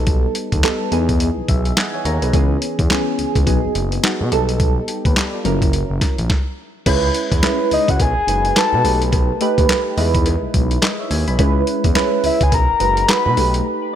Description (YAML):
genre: R&B, new jack swing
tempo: 106 BPM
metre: 4/4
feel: swing 60% on 16ths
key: unclear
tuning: A4 = 440 Hz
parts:
  - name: soft electric-piano-like synth keys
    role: accompaniment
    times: 0.0-14.0 s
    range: E3 to B5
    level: -20 LUFS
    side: right 2 dB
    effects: chorus, phaser
  - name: smooth gliding synth bass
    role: bass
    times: 0.0-13.6 s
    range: F#1 to B2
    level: -20 LUFS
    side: equal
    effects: none
  - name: boom bap sampler-style drum kit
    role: drums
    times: 0.1-13.6 s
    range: crash cymbal, handclaps, hi-hat, kick drum, snare drum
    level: -18 LUFS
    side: equal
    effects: none
  - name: cowbell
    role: percussion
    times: 6.9-13.2 s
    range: none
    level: -32 LUFS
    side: left 5 dB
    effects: none
  - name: soft octave-layered synth lead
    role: melody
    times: 7.7-13.6 s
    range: D#5 to B5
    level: -18 LUFS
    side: left 3 dB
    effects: chorus, ping-pong delay
room: digital ambience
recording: none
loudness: -15 LUFS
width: side -10 dB against mid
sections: 0.0-6.9 A section; 6.9-14.0 B section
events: synth keys fill 1.2-2.3; stop 6.3-6.9; break 13.7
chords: 0.0 Baug7; 0.9 Emaj7; 2.3 C#m7; 3.5 B6; 4.3 Baug7; 5.4 F#7; 6.9 C#m7; 8.0 B6; 8.8 Baug7; 10.0 Emaj7; 11.4 C#m7; 12.5 B6; 13.4 Baug7